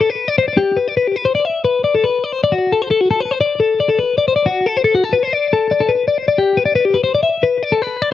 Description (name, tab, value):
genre	rock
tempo	155 BPM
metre	5/4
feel	straight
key	unclear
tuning	A4 = 441 Hz
part	twelve-string electric guitar	solo	0.0-8.1 s	F#4 to E5	-14 LUFS	left 4 dB	slapback echo
room	light reverb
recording	dry, close 1970s-style studio recording, faint mains hum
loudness	-14 LUFS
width	side -11 dB against mid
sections	0.0-6.4 A section; 6.4-8.1 B section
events	none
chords	none